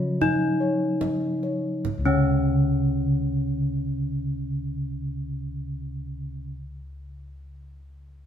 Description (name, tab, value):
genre	Javanese gamelan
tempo	35 BPM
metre	4/4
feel	straight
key	unclear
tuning	A4 = 439 Hz
part	gamelan-type bronze metallophone	melody	0.0-6.5 s	Db4 to Gb4-35c	-27 LUFS	left 2 dB	none
part	gamelan-type bronze metallophone	accompaniment	0.0-6.5 s	Db3 to Gb3-35c	-27 LUFS	right 1 dB	none
part	gamelan-type bossed gongs	arpeggios	0.0-6.5 s	Db5 to Eb5+30c	-34 LUFS	left 4 dB	none
part	gamelan-type bossed gongs	bass	0.0-6.4 s	Db2 to Gb4-35c	-31 LUFS	left 1 dB	none
part	kendang	percussion	0.2-2.7 s	none	-35 LUFS	right 6 dB	none
room	wet stone room reverb, RT60 1.3 s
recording	band playing live in one room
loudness	-23 LUFS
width	side -9 dB against mid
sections	0.0-1.9 A section; 1.9-8.3 B section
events	slowing down 0.0-1.9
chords	none